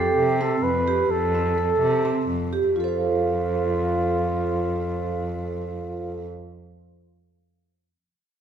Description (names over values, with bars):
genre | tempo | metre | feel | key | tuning
contemporary instrumental, contemporary | 251 BPM (eighths) | 7/8 | straight | F lydian | A4 = 440 Hz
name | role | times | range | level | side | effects
breathy flugelhorn | melody | 0.0-6.3 s | F4 to B4 | -26 LUFS | equal | none
vibraphone with medium mallets | arpeggios | 0.0-6.4 s | C4 to F5 | -25 LUFS | right 3 dB | none
warm cello | bass | 0.0-6.3 s | F2 to C3 | -28 LUFS | right 1 dB | none
room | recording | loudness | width
wet scoring stage reverb, RT60 1.7 s | none | -21 LUFS | side -8 dB against mid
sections
0.0-2.8 A section; 2.8-6.1 B section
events
none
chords
0.0 F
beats
0.17 0.41 0.64 0.87 | 1.10 1.34 1.57 1.81 2.04 2.28 2.52 | 2.76 3.00 3.23 3.47 3.71 3.95 4.19 | 4.43 4.67 4.91 5.15 5.38 5.62 5.86